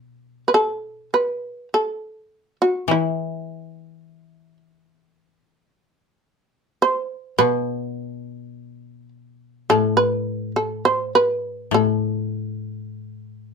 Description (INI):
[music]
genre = japanese traditional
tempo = 50-54 BPM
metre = 4/4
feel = rubato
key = A minor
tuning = A4 = 435 Hz
[part]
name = shamisen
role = melody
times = 0.0-13.5 s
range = E4 to C5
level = -19 LUFS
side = right 2 dB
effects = none
[part]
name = koto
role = accompaniment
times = 0.0-13.5 s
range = A2 to E3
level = -24 LUFS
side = left 6 dB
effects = none
[sound]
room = moderate small room reverb, RT60 0.5 s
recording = minimal, uncompressed stereo recording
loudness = -20 LUFS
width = side -5 dB against mid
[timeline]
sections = 0.0-13.5 A section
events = none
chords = none